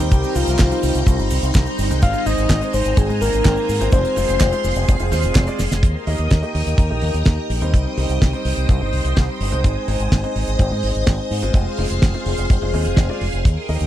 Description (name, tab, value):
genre	italo disco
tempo	126 BPM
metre	4/4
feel	straight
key	unclear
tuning	A4 = 440 Hz
part	soft octave-layered synth lead	melody	0.0-5.3 s	F4 to F5	-23 LUFS	left 2 dB	chorus, tape echo
part	string machine, full ensemble	sustained chords	0.0-13.9 s	Eb4 to Eb6	-25 LUFS	equal	phaser, ensemble chorus
part	dark grand piano	stabs	0.0-13.9 s	G3 to Eb5	-27 LUFS	right 1 dB	tape echo
part	fingered electric bass with an envelope filter	bass	0.0-13.9 s	F1 to Ab2	-21 LUFS	equal	tube saturation
part	damped 70s drum kit	drums	0.0-13.9 s	cabasa, handclaps, hi-hat, snare drum	-24 LUFS	right 1 dB	none
part	kick drum	drums	0.1-13.5 s	none	-14 LUFS	equal	none
room	little or no reverb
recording	dry, close 1970s-style studio recording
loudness	-16 LUFS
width	side -12 dB against mid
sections	0.0-5.8 A section; 5.8-13.9 B section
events	drum fill 5.6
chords	0.1 Cm; 2.0 Ab; 3.9 Fm; 5.8 Eb; 7.7 Cm; 9.6 Ab; 11.5 Fm